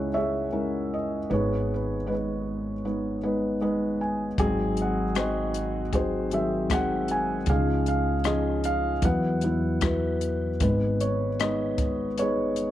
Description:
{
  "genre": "acoustic folk-pop ballad",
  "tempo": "77 BPM",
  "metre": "4/4",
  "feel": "straight",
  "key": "G# minor",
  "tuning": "A4 = 440 Hz",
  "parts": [
    { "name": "felt-muted upright piano", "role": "melody", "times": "0.0-12.7 s", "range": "G#1 to G#5", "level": "-25 LUFS", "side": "equal", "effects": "none" },
    { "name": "upright bass", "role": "bass", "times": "0.0-12.7 s", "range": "G#1 to E2", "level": "-32 LUFS", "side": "right 1 dB", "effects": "none" },
    { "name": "compact cocktail drum kit", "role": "drums", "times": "4.4-12.7 s", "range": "hi-hat, kick drum, rim click", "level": "-29 LUFS", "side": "left 1 dB", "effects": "none" }
  ],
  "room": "small room reverb",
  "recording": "1960s-style stereo",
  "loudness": "-24 LUFS",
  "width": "side -13 dB against mid",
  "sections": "0.0-10.6 A section; 10.6-12.7 B section",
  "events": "felt piano fill 3.2-4.4",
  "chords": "0.0 C#m; 1.3 G#m; 7.5 C#add9; 9.0 Esus2; 10.6 G#m"
}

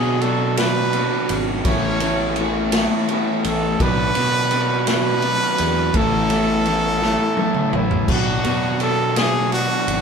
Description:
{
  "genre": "indie rock",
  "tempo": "56 BPM (dotted quarters)",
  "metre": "6/8",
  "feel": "straight",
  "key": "unclear",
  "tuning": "A4 = 440 Hz",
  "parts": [
    { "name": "clear trumpet", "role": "melody", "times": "0.0-10.0 s", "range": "E4 to C#5", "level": "-22 LUFS", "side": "right 1 dB", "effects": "none" },
    { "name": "electric guitar through a small old amp", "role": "riff", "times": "0.0-10.0 s", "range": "B2 to D5", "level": "-24 LUFS", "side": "right 6 dB", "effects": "none" },
    { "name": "overdriven semi-hollow guitar", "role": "riff", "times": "0.0-10.0 s", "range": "A2 to F#4", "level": "-24 LUFS", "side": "left 4 dB", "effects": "none" },
    { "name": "fuzz picked electric bass", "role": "bass", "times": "0.0-10.0 s", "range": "G#1 to B2", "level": "-24 LUFS", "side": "equal", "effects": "overdrive" },
    { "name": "vintage drum kit", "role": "drums", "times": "0.2-10.0 s", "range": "crash cymbal, kick drum, ride cymbal, snare drum, toms", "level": "-24 LUFS", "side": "equal", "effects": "none" }
  ],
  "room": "moderate studio reverb, RT60 0.8 s",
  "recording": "band playing live in one room",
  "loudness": "-17 LUFS",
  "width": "side -6 dB against mid",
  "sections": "0.0-8.1 A section; 8.1-10.0 A section",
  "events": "drum fill 7.0-8.1",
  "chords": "0.0 Bm; 1.7 Aadd9; 3.8 Bm; 5.9 Aadd9; 8.1 Bm"
}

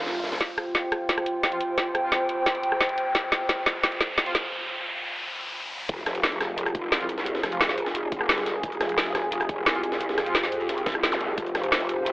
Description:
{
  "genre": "dark technical drum and bass",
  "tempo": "175 BPM",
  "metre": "4/4",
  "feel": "straight",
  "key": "F minor",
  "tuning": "A4 = 440 Hz",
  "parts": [
    { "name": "dark analog pad", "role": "sustained chords", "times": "0.0-12.1 s", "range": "F4 to G5", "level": "-30 LUFS", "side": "equal", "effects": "chorus, sidechain pumping" },
    { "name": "warm brass ensemble", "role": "stabs", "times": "0.0-2.1, 4.3, 7.0-7.6, 9.7-10.4 s", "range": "F3 to F4", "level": "-37 LUFS", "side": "right 1 dB", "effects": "none" },
    { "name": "growl bass", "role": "bass", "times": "0.0-0.4, 5.9-12.1 s", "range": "F1 to F2", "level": "-30 LUFS", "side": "equal", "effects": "chorus, tube saturation" },
    { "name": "riser, sub drop and zap", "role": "sound effects", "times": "0.0-7.3, 11.1-11.2 s", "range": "none", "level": "-33 LUFS", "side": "equal", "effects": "none" },
    { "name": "warbly tape-like pad", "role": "texture", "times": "0.0-4.5 s", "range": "F4 to G5", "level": "-34 LUFS", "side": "equal", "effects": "chorus, built-in reverb, sidechain pumping" },
    { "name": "jungle sampler-style drum kit", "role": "drums", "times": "0.1-0.4, 5.9-12.1 s", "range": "hi-hat, snare drum", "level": "-32 LUFS", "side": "equal", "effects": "high-pass filter on hats, high-pass filter on snare, high-pass filter on room" },
    { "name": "drum and bass drum kit", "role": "drums", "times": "0.4-12.1 s", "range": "hi-hat, rim click, snare drum", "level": "-25 LUFS", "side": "equal", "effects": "low-pass filter on snare, low-pass filter on hats, low-pass filter on room" },
    { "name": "electronic kick drum", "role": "drums", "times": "5.9-11.4 s", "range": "none", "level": "-33 LUFS", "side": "equal", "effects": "none" }
  ],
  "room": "moderate plate reverb, RT60 2.2 s",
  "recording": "telephone sound",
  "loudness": "-23 LUFS",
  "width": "side -21 dB against mid",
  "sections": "0.4-5.9 A section; 5.9-12.1 B section",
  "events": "riser 0.0-0.4, 0.4-5.9; build-up 0.4-5.9; drum fill 0.4-4.5; break 4.5-5.9; drop 5.9-12.1; impact 5.9-7.3",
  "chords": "0.4 Fsus2; 5.9 Fmadd9"
}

